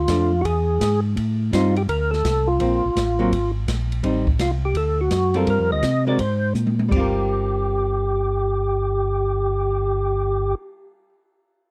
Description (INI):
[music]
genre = soul jazz organ trio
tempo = 167 BPM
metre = 4/4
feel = swing 66% on 8ths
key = G minor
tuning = A4 = 440 Hz
[part]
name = percussive tonewheel organ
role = melody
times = 0.0-10.6 s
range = F4 to Eb5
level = -24 LUFS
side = equal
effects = slow rotary speaker, overdrive, chorus vibrato
[part]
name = mellow tonewheel organ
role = bass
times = 0.0-10.5 s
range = G1 to C3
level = -25 LUFS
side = equal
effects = chorus vibrato, slow rotary speaker
[part]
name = archtop guitar, miked and amplified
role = accompaniment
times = 0.1-11.2 s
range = F3 to Bb4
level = -27 LUFS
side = equal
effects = none
[part]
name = open jazz drum kit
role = drums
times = 0.1-9.7 s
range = crash cymbal, cymbal swell, hi-hat, kick drum, ride cymbal, snare drum, toms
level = -29 LUFS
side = equal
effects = none
[sound]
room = small room ambience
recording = dry, close 1970s-style studio recording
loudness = -21 LUFS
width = mono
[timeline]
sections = 0.0-1.2 A section; 1.2-6.9 B section; 6.9-9.8 C section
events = drum fill 6.6-6.9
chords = 0.4 E; 1.2 Am7b5; 1.9 D5; 2.6 Fadd11; 3.3 Absus2; 4.0 Am7b5; 4.8 D7; 5.5 Gm7; 6.2 Abadd9; 6.9 Gm7